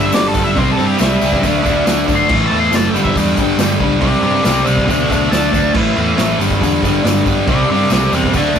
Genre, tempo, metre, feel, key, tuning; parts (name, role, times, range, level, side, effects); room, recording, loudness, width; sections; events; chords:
garage rock duo or trio; 139 BPM; 4/4; straight; A4 = 440 Hz
octave-fuzz lead guitar; melody; 0.0-8.6 s; E4 to C6; -19 LUFS; left 2 dB; distortion
fuzz guitar; riff; 0.0-8.6 s; G2 to D4; -14 LUFS; equal; distortion
picked electric bass; bass; 0.0-8.6 s; F#1 to G2; -21 LUFS; right 1 dB
raw garage drum kit; drums; 0.1-8.6 s; crash cymbal, hi-hat, kick drum, snare drum; -19 LUFS; equal
tambourine; percussion; 0.1-8.6 s; -31 LUFS; left 4 dB
moderate small room reverb, RT60 0.6 s; rough rehearsal-room recording, warm saturation; -12 LUFS; side -7 dB against mid
0.0-8.6 A section
lead electric guitar solo 0.0-8.6
0.0 G5; 0.6 C; 1.4 D5; 2.3 A5; 2.9 G5; 4.0 C; 4.9 D5; 5.8 A5; 6.4 G5; 7.5 C